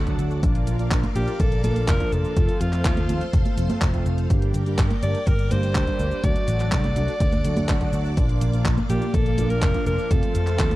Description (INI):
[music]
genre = italo disco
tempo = 124 BPM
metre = 4/4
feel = straight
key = unclear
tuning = A4 = 438 Hz
[part]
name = string machine, full ensemble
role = sustained chords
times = 0.0-10.8 s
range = Bb3 to D6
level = -33 LUFS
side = left 1 dB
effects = ensemble chorus
[part]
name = mellow synth brass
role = stabs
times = 0.0-10.7 s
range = G2 to G4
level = -30 LUFS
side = right 2 dB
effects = chorus
[part]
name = picked electric bass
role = bass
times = 0.0-10.8 s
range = F1 to F2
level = -24 LUFS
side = equal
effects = none
[part]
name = electronic kick drum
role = drums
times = 0.1-10.7 s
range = none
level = -24 LUFS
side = equal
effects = none
[part]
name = gated 80s digital drum machine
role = drums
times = 0.1-10.8 s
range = cabasa, congas, handclaps, hi-hat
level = -29 LUFS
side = right 1 dB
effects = gated reverb
[part]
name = bright alto saxophone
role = melody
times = 1.2-10.8 s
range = F4 to D5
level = -28 LUFS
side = equal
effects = tape echo
[sound]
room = little or no reverb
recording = dry, close 1970s-style studio recording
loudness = -19 LUFS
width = side -17 dB against mid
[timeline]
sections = 0.0-10.8 A section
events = none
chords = 0.4 Bb; 2.4 F; 4.3 Gm; 6.2 D; 8.2 Bb; 10.1 F